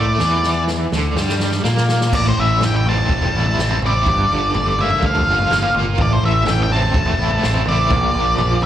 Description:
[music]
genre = indie rock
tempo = 124 BPM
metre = 4/4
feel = straight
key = unclear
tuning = A4 = 441 Hz
[part]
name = octave-fuzz lead guitar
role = melody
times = 0.0-8.7 s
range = C5 to A5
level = -19 LUFS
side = equal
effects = distortion, slapback echo, digital delay
[part]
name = crunchy overdriven guitar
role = riff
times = 0.0-8.7 s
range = G2 to F4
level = -20 LUFS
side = equal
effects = tremolo, slapback echo
[part]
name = growling fingered electric bass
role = bass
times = 0.0-8.7 s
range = E1 to Bb2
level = -20 LUFS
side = equal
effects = overdrive
[part]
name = vintage drum kit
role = drums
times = 0.2-8.7 s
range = crash cymbal, kick drum, snare drum, toms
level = -22 LUFS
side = equal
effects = none
[sound]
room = light reverb, small room ambience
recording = live gig heard through the venue's PA, club reverb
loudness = -14 LUFS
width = side -11 dB against mid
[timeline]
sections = 0.0-2.1 A section; 2.1-8.7 B section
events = drum fill 0.2-2.1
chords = 0.0 D5; 2.1 Am7; 4.1 Gm7; 6.0 Am; 7.9 Bb

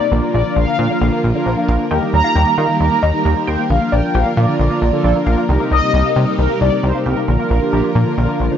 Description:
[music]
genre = synth-pop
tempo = 134 BPM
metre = 4/4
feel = straight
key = Bb major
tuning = A4 = 438 Hz
[part]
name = mellow synth brass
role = melody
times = 0.0-8.6 s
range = Bb4 to Bb5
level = -19 LUFS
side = left 1 dB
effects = chorus, phaser
[part]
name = mellow synth brass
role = accompaniment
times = 0.0-8.6 s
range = Bb3 to C5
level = -21 LUFS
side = equal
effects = chorus
[part]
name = string machine, violas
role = sustained chords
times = 0.0-8.6 s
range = C3 to Bb4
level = -22 LUFS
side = equal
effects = ensemble chorus
[part]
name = resonant blip pluck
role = arpeggios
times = 0.0-8.6 s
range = D3 to G5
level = -25 LUFS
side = left 1 dB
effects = phaser, ping-pong delay
[part]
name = chorused synth bass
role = bass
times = 0.1-8.5 s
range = Bb1 to Eb3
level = -16 LUFS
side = equal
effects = none
[part]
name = warbly dusty pluck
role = second line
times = 1.9-5.4 s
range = D5 to G5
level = -23 LUFS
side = left 2 dB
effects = chorus, ping-pong delay
[sound]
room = moderate booth ambience, RT60 0.2 s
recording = nothing above 7.6 kHz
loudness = -13 LUFS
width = side -9 dB against mid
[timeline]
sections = 0.0-8.6 A section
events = none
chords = 0.1 Bb; 1.9 Eb; 3.7 Bb; 5.5 Cm7; 7.3 Bb

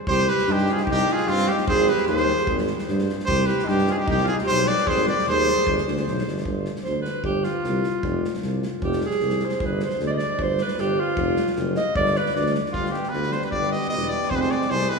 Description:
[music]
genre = balkan folk, Balkan brass band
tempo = 152 BPM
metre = 2/4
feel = straight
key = G phrygian dominant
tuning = A4 = 440 Hz
[part]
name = brilliant trumpet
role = melody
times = 0.1-5.8, 12.7-15.0 s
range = F4 to Eb5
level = -24 LUFS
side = left 1 dB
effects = none
[part]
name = clear alto saxophone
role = second line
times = 0.1-12.5 s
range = C4 to Eb5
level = -25 LUFS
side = right 2 dB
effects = none
[part]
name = warm tuba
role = bass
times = 0.1-14.9 s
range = E1 to G2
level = -25 LUFS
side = left 1 dB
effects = none
[part]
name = loose indie drum kit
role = percussion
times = 0.1-15.0 s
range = kick drum, snare drum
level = -31 LUFS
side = equal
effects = none
[part]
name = bright trombone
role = accompaniment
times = 12.7-15.0 s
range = G3 to Ab3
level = -32 LUFS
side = right 3 dB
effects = none
[part]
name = mellow French horn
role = accompaniment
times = 12.7-15.0 s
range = B3 to C4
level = -28 LUFS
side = right 1 dB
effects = none
[sound]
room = wet cathedral reverb, RT60 4.0 s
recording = recorded in a church or concert hall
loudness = -20 LUFS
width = side -4 dB against mid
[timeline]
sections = 0.1-6.4 A section; 6.4-12.7 B section; 12.7-15.0 C section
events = alto saxophone solo 6.4-12.7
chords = 0.1 C5; 1.7 Ab; 3.3 C5; 4.9 Ab; 5.7 G; 6.4 G5; 8.0 Fm; 9.6 G5; 11.2 Ebmadd9/F; 11.9 G5; 12.7 G; 14.3 Fm

